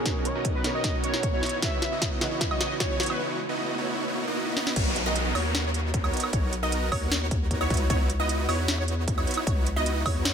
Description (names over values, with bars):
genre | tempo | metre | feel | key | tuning
future bass | 153 BPM | 4/4 | half-time | B major | A4 = 441 Hz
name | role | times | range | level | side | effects
warm velvety synth lead | melody | 0.0-3.2 s | G#4 to E5 | -32 LUFS | left 1 dB | chorus, cassette tape, sidechain pumping, tape echo
dark concert grand piano | accompaniment | 0.0-4.8 s | B2 to E5 | -36 LUFS | right 4 dB | sidechain pumping, digital delay
shimmering ambient pad | sustained chords | 0.0-3.2 s | D#3 to C#5 | -38 LUFS | right 2 dB | none
supersaw chords | riff | 0.0-10.3 s | B3 to D#5 | -30 LUFS | right 1 dB | sidechain pumping, low-pass filter, digital delay
riser and downlifter | sound effects | 2.1-7.9 s | none | -35 LUFS | equal | none
electronic kick drum | drums | 0.1-10.1 s | none | -28 LUFS | left 1 dB | none
trap drum kit | drums | 0.1-10.3 s | crash cymbal, hi-hat, snare drum, woodblock | -29 LUFS | right 1 dB | none
wide unison pluck | arpeggios | 4.8-10.3 s | C#5 to D#5 | -34 LUFS | right 1 dB | sidechain pumping
saturated sub bass | bass | 4.8-10.3 s | B1 to F#2 | -29 LUFS | left 1 dB | sidechain pumping
room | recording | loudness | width
light reverb | none | -24 LUFS | side -7 dB against mid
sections
0.0-4.8 A section; 4.8-10.3 B section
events
build-up 0.0-4.8; drum fill 0.0-3.2, 4.6; riser 2.1-4.8; drop 4.8-10.3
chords
0.0 Bmaj9; 1.4 C#m11; 4.8 Bmaj9; 7.7 C#m11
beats
| 0.06 0.45 0.84 1.23 | 1.62 2.02 2.41 2.80 | 3.19 3.59 3.98 4.37 | 4.76 5.16 5.55 5.94 | 6.33 6.72 7.12 7.51 | 7.90 8.29 8.68 9.08 | 9.47 9.86 10.25